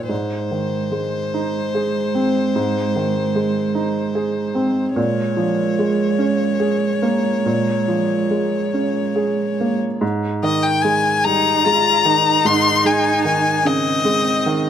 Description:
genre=neoclassical piano and strings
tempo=49 BPM (dotted quarters)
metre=6/8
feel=rubato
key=unclear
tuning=A4 = 441 Hz
part: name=rich violin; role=melody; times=0.0-14.7 s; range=C5 to C6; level=-20 LUFS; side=left 5 dB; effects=tape echo
part: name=felt-muted upright piano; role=accompaniment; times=0.0-14.7 s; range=Ab2 to Ab4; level=-20 LUFS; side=right 2 dB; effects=none
part: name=rich cello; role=second line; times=0.1-14.7 s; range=Ab3 to F4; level=-23 LUFS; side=right 5 dB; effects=none
room=light reverb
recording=none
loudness=-16 LUFS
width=side -9 dB against mid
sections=0.1-10.0 A section; 10.0-14.7 B section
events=none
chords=0.1 Ab; 5.0 Bbm7; 10.0 Ab

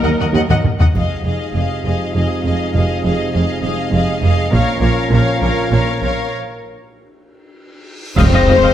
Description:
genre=cinematic, epic orchestral film score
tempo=100 BPM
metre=3/4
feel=straight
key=F phrygian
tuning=A4 = 440 Hz
part: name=warm symphonic violin section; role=melody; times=0.0-8.7 s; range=Bb4 to F5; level=-25 LUFS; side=left 3 dB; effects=none
part: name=warm symphonic violin section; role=second line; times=0.0-8.7 s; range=C5 to Gb5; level=-22 LUFS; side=left 3 dB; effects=none
part: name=rich symphonic viola section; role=accompaniment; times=0.0-8.7 s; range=Ab4 to F5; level=-24 LUFS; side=left 1 dB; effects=none
part: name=mellow French horn section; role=sustained chords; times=0.0-8.7 s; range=Ab3 to Eb4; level=-25 LUFS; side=left 5 dB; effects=none
part: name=warm trombone section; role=sustained chords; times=0.0-8.7 s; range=Bb2 to Bb3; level=-24 LUFS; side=right 2 dB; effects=none
part: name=rich symphonic cello section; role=bass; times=0.0-8.7 s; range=Eb2 to Bb2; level=-20 LUFS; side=right 2 dB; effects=none
part: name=rich symphonic double bass section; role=bass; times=0.0-8.5 s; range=F1 to Eb2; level=-20 LUFS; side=right 2 dB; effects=none
part: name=warm tuba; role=bass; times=0.0-0.4, 8.2-8.5 s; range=F1 to Eb2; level=-22 LUFS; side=right 3 dB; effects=none
part: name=taiko ensemble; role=drums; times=0.2-8.7 s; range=none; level=-17 LUFS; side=equal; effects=none
part: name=triangle, cymbal swell, clash cymbals and concert bass drum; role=percussion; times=1.0-8.7 s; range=none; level=-22 LUFS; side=equal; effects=none
part: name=reverse cymbal and impact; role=sound effects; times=7.8-8.7 s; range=none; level=-29 LUFS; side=equal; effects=none
room=moderate scoring stage reverb, RT60 1.7 s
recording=none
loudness=-13 LUFS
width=side -11 dB against mid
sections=1.0-8.2 A section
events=drum fill 0.5-1.0, 7.7-8.2; break 6.3-8.2; reverse cymbal 7.8-8.2; band accent 8.2-8.7; impact 8.2-8.7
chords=0.0 Ebm; 1.0 Fm7; 4.5 Bbm; 8.2 Fm7

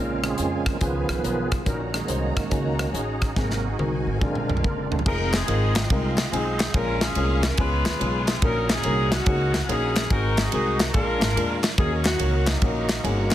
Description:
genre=uptempo gospel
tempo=143 BPM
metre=4/4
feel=swing 66% on 8ths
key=unclear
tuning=A4 = 439 Hz
part: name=dark upright piano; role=accompaniment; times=0.0-13.3 s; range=Ab2 to Db5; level=-30 LUFS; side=left 2 dB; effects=none
part: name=bright tonewheel organ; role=sustained chords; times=0.0-13.3 s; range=C3 to Eb6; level=-31 LUFS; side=right 3 dB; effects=slow rotary speaker, chorus vibrato
part: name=warm symphonic string section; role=sustained chords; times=0.0-5.0 s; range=Ab4 to Bb5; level=-39 LUFS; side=equal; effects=none
part: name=upright bass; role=bass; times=0.0-13.3 s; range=F1 to F2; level=-26 LUFS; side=equal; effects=none
part: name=modern studio drum kit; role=drums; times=0.2-13.3 s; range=crash cymbal, hi-hat, kick drum, ride cymbal, rim click, snare drum, toms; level=-25 LUFS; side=equal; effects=soft clipping on kick
part: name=warm saxophone section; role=melody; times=5.1-13.3 s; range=Gb3 to Cb5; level=-26 LUFS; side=equal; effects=slapback echo
part: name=group handclap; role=percussion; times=5.3-13.3 s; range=none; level=-35 LUFS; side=left 4 dB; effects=none
room=light reverb, studio ambience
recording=dense, heavily limited modern master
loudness=-21 LUFS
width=side -12 dB against mid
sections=0.0-5.1 A section; 5.1-13.3 B section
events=tonewheel organ solo 0.0-5.1; drum fill 3.4-5.1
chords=0.0 Bbm7; 0.8 Db7; 1.7 Gb6/Bb; 3.4 Ab7; 4.2 Bb7; 5.1 Fm7; 6.7 Bbm7; 7.6 Db7; 8.4 Gb6/Bb; 10.1 Ab7; 10.9 Bb7; 11.8 Ebm7

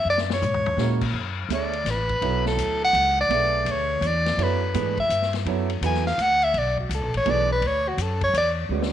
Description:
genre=modal jazz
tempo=167 BPM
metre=3/4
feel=swing 65% on 8ths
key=B dorian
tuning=A4 = 440 Hz
part: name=breathy soprano saxophone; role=melody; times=0.0-8.5 s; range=F#4 to G#5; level=-22 LUFS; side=equal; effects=none
part: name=upright bass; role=bass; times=0.0-8.9 s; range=A1 to A#2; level=-27 LUFS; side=equal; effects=none
part: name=vintage drum kit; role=drums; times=0.2-8.9 s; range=crash cymbal, hi-hat, kick drum, ride cymbal, snare drum, toms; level=-32 LUFS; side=left 7 dB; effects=none
part: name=warm grand piano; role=accompaniment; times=0.8-8.9 s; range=E3 to E5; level=-29 LUFS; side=right 11 dB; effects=none
room=moderate echo chamber reverb, RT60 1.3 s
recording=1960s-style stereo with parts hard left and right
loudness=-20 LUFS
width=side -10 dB against mid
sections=0.0-1.1 A section; 1.1-8.9 B section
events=drum fill 0.1-0.8, 8.7; soprano saxophone solo 1.1-8.9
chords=0.1 F#7; 1.1 Bm7

